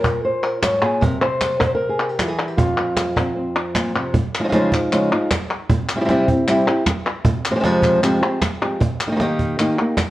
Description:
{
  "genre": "flamenco",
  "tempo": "154 BPM",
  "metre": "4/4",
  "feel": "straight",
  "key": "F minor",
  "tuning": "A4 = 441 Hz",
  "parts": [
    { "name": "flamenco guitar", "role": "melody", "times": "0.0-10.0 s", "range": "F2 to Db5", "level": "-18 LUFS", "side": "equal", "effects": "none" },
    { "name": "cajon", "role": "percussion", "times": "0.0-10.1 s", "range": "none", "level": "-22 LUFS", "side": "right 2 dB", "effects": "none" },
    { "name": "palmas hand claps", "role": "percussion", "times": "0.0-10.1 s", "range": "none", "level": "-24 LUFS", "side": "left 2 dB", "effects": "none" }
  ],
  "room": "moderate studio reverb, RT60 1.0 s",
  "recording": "worn, warbling old tape, cassette tape, warbly pitch drift",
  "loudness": "-17 LUFS",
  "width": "side -16 dB against mid",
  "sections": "0.0-4.1 A section; 4.1-10.1 B section",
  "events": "none",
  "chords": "0.0 Bbm; 1.0 C; 2.6 F5; 4.1 Dbadd9; 5.7 C; 7.3 Fmadd9; 8.8 Eb"
}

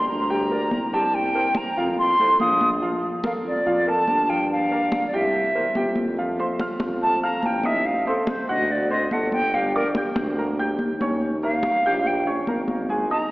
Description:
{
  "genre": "Afro-Cuban jazz",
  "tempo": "143 BPM",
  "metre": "4/4",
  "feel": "straight",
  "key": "F major",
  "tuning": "A4 = 441 Hz",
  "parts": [
    { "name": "mellow hollow silver concert flute", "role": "melody", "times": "0.0-13.3 s", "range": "A4 to Eb6", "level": "-22 LUFS", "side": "equal", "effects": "none" },
    { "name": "warm upright piano", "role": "accompaniment", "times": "0.0-13.3 s", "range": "F3 to G6", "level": "-26 LUFS", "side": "equal", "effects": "none" },
    { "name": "breathy tuba", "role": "bass", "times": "0.0-13.2 s", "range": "G1 to G2", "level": "-28 LUFS", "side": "equal", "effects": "none" },
    { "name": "congas", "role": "percussion", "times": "0.3-13.3 s", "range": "none", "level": "-30 LUFS", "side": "left 1 dB", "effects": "none" }
  ],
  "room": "wet church reverb, RT60 2.9 s",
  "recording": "recorded in a church or concert hall, AM radio sound",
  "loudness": "-20 LUFS",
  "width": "side -19 dB against mid",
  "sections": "0.0-6.2 A section; 6.2-13.3 B section",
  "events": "flute solo 6.2-13.3",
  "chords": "0.0 Gm; 1.1 C5; 2.0 F; 2.8 Bbmaj7; 4.5 Gm7; 5.3 C7; 6.2 F; 7.9 Adim; 8.7 D7; 9.5 Gm; 11.2 Eb9"
}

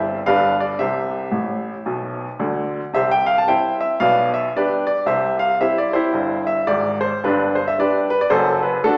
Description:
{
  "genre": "jazz, stride piano",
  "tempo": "112 BPM",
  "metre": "4/4",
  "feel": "swing 61% on 8ths",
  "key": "C major",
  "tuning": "A4 = 440 Hz",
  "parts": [
    { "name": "bright upright piano", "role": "solo", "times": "0.0-9.0 s", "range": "F#1 to A5", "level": "-20 LUFS", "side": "equal", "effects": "none" }
  ],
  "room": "wet recital hall reverb, RT60 1.4 s",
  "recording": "recorded in a church or concert hall, small speaker sound",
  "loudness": "-20 LUFS",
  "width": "mono",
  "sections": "0.0-2.9 A section; 2.9-9.0 A section",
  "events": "upright piano fill 1.3-2.9",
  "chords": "0.3 G7; 0.8 C; 4.0 G/B; 5.1 C; 7.2 G; 8.3 D/F#"
}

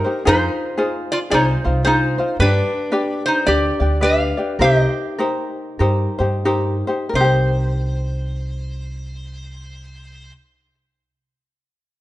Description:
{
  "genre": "Hawaiian",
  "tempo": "84-113 BPM",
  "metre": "4/4",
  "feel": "swing 61% on 8ths",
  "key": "C minor",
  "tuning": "A4 = 440 Hz",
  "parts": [
    { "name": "metal-body resonator slide guitar", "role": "melody", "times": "0.0-10.3 s", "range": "D4 to F5", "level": "-20 LUFS", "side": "equal", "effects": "none" },
    { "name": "ukulele", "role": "accompaniment", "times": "0.0-10.7 s", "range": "D4 to D5", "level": "-21 LUFS", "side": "left 1 dB", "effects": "none" },
    { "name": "upright bass", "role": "bass", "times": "0.3-10.3 s", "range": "C2 to G2", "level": "-20 LUFS", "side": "right 1 dB", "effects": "none" }
  ],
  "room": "light reverb",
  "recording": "nothing above 10.7 kHz",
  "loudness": "-16 LUFS",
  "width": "side -16 dB against mid",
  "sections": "0.0-7.1 A section; 7.1-12.0 B section",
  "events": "slowing down 2.4-7.1",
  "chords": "0.3 Fm7; 2.4 G; 4.6 Cm7"
}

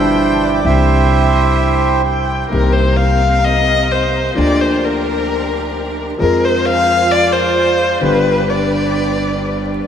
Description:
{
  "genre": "tango",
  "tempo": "free time",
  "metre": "none",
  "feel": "none",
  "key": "C minor",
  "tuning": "A4 = 441 Hz",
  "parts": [
    { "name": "bandoneon", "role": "melody", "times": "0.0-2.0 s", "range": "D4 to D5", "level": "-18 LUFS", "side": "right 4 dB", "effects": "analog delay" },
    { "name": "warm violin", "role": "second line", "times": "0.0-9.7 s", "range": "Bb4 to G5", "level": "-16 LUFS", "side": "left 2 dB", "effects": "none" },
    { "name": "warm grand piano", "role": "accompaniment", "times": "0.0-9.8 s", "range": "G1 to Ab4", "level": "-18 LUFS", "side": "left 1 dB", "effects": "none" },
    { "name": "upright bass", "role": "bass", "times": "0.0-9.8 s", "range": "G1 to F2", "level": "-20 LUFS", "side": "equal", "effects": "none" },
    { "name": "bright studio string section", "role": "stabs", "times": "2.5-9.8 s", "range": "C4 to C5", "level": "-24 LUFS", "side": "right 3 dB", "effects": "none" }
  ],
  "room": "wet cathedral reverb, RT60 5.1 s",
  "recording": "in a vast, echoing space, vinyl crackle",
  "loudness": "-12 LUFS",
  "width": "side -8 dB against mid",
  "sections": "0.0-2.5 A section; 2.5-9.9 B section",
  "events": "violin solo 2.5-9.9",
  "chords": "0.0 G6; 0.6 Cadd9; 2.5 Cm7; 4.4 Bb6/D; 6.2 Fm; 8.0 G"
}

